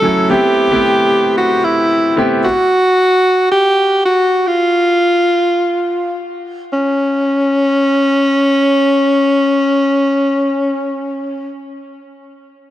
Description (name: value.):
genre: amapiano.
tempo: 112 BPM.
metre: 4/4.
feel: swing 58% on 16ths.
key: unclear.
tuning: A4 = 440 Hz.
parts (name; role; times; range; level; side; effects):
breathy alto saxophone; melody; 0.0-11.5 s; C#4 to A4; -12 LUFS; equal; tape echo.
warm concert grand piano; accompaniment; 0.0-2.5 s; F#3 to A4; -15 LUFS; equal; none.
room: light reverb, studio reverb.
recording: dense, heavily limited modern master.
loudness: -11 LUFS.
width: side -13 dB against mid.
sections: 0.0-6.7 A section; 6.7-11.0 B section.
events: none.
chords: 0.3 Am9; 2.4 N.C..